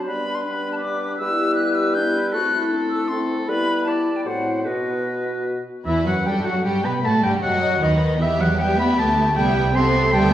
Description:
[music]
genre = classical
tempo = 155 BPM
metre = 3/4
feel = rubato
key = E minor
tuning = A4 = 439 Hz
[part]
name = bright concert flute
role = second line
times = 0.0-5.4 s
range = D#5 to G6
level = -25 LUFS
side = left 2 dB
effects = none
[part]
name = clear clarinet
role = second line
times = 0.0-5.6 s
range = C4 to G4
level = -31 LUFS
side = left 1 dB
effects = none
[part]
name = clear oboe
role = second line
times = 0.0-10.3 s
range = A4 to C6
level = -24 LUFS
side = equal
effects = none
[part]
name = warm bassoon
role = accompaniment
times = 0.0-5.7 s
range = A2 to A3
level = -27 LUFS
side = right 1 dB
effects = none
[part]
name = warm French horn section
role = sustained chords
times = 0.0-10.3 s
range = D#3 to F#4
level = -26 LUFS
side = left 2 dB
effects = none
[part]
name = warm symphonic violin section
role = melody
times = 5.9-10.3 s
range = D#4 to E5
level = -31 LUFS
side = left 5 dB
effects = none
[part]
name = warm symphonic violin section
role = second line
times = 5.9-10.3 s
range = E4 to D#5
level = -27 LUFS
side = left 1 dB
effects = none
[part]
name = warm symphonic viola section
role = accompaniment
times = 5.9-10.3 s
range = D#3 to G4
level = -27 LUFS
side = right 2 dB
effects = none
[part]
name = clear symphonic double bass section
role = bass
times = 5.9-10.3 s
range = C2 to B2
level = -25 LUFS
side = right 2 dB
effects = none
[part]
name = warm symphonic cello section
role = bass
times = 5.9-10.3 s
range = D#3 to C4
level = -23 LUFS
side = right 1 dB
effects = none
[sound]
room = wet recital hall reverb, RT60 1.5 s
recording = heard from further back in the room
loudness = -18 LUFS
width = side -12 dB against mid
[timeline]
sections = 0.0-5.9 A section; 5.9-10.3 B section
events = none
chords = 0.1 G; 1.2 Em/G; 2.3 Am; 3.5 Em/G; 4.3 F#m7b5/A; 4.7 B; 5.9 Em; 7.0 B7; 8.2 Em; 9.4 Cmaj7

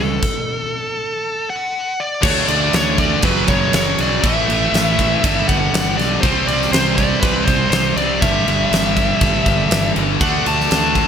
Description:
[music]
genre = hard rock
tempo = 120 BPM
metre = 4/4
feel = straight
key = unclear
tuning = A4 = 443 Hz
[part]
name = high-gain lead guitar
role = melody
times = 0.0-11.1 s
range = A4 to A5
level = -20 LUFS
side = left 1 dB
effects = distortion, ping-pong delay
[part]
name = crunchy overdriven guitar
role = riff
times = 0.0-11.1 s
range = F#2 to D4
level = -23 LUFS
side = right 11 dB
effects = none
[part]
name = scooped high-gain guitar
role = riff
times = 0.0-11.1 s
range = F#2 to D4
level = -22 LUFS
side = left 11 dB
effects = distortion
[part]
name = fuzz fingered electric bass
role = bass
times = 0.0-11.1 s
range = F#1 to D2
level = -23 LUFS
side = equal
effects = overdrive
[part]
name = huge arena drum kit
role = drums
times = 0.2-11.1 s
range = crash cymbal, kick drum, snare drum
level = -19 LUFS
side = equal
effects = gated reverb
[part]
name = tight distorted guitar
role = riff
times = 2.2-11.1 s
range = F#2 to D4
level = -24 LUFS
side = equal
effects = distortion
[sound]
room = light reverb, studio ambience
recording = bright 1980s-style digital production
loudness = -14 LUFS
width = side -8 dB against mid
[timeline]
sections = 0.0-2.2 A section; 2.2-11.1 B section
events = stop 0.2-2.2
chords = 0.2 N.C.; 2.2 D5; 3.2 F#5; 4.2 A5; 5.2 G; 6.2 C5; 8.2 G5; 10.2 D5

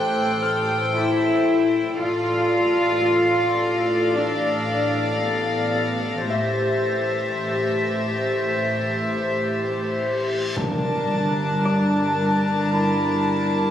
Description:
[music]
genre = cinematic, suspense film score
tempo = 56 BPM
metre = 4/4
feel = straight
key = A minor, G dorian from 10.6 s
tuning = A4 = 440 Hz
[part]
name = warm symphonic violin section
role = melody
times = 0.0-13.7 s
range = E5 to A5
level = -28 LUFS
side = equal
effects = none
[part]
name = warm symphonic violin section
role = second line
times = 0.0-13.7 s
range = Bb4 to D5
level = -28 LUFS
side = left 2 dB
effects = none
[part]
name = rich studio viola section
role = accompaniment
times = 0.0-13.7 s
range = D4 to A4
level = -27 LUFS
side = left 1 dB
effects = none
[part]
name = warm symphonic cello section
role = bass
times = 0.0-13.7 s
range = G2 to F4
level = -24 LUFS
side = equal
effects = none
[part]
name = warm symphonic double bass section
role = bass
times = 0.0-13.7 s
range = G1 to A1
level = -28 LUFS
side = equal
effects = none
[part]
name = concert harp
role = texture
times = 0.0-13.7 s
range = D5 to F6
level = -30 LUFS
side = left 3 dB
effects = none
[part]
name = warm symphonic violin section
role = texture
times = 0.0-10.0 s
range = D6 to Bb6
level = -33 LUFS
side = left 4 dB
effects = none
[part]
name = reverse cymbal and impact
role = sound effects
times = 10.0-13.7 s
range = none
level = -30 LUFS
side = equal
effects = none
[part]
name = clear clarinet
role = second line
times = 11.1-13.7 s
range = D4 to E4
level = -26 LUFS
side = left 2 dB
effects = none
[sound]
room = moderate scoring stage reverb, RT60 1.7 s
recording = recorded on a phone in the room, studio reverb, vinyl crackle, compression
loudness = -19 LUFS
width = side -10 dB against mid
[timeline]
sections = 0.0-10.6 A section; 10.6-13.7 B section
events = reverse cymbal 10.0-10.6; impact 10.6-13.7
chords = 0.0 Am7; 2.0 Dm/A; 6.3 Am7; 10.6 Gmadd9

